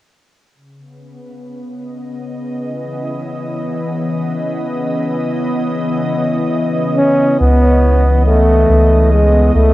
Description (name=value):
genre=ambient dub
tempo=70 BPM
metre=4/4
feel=straight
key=C# minor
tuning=A4 = 440 Hz
part: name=soft additive organ-like pad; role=sustained chords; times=0.5-9.7 s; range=C#3 to D#5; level=-18 LUFS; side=equal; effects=ensemble chorus, built-in reverb, cassette tape
part: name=warm trombone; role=melody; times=7.0-9.7 s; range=G#3 to C#4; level=-13 LUFS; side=equal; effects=dub echo
part: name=soft dub sub bass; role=bass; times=7.4-9.7 s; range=C#2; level=-11 LUFS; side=equal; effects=none
room=light reverb, small room ambience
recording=home recording on cassette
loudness=-12 LUFS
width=side -16 dB against mid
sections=0.5-7.4 A section; 7.4-9.7 B section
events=fade-in on ambient pad 0.5-7.4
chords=0.5 C#m9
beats=| 0.54 1.40 2.26 3.11 | 3.97 4.83 5.68 6.54 | 7.40 8.26 9.11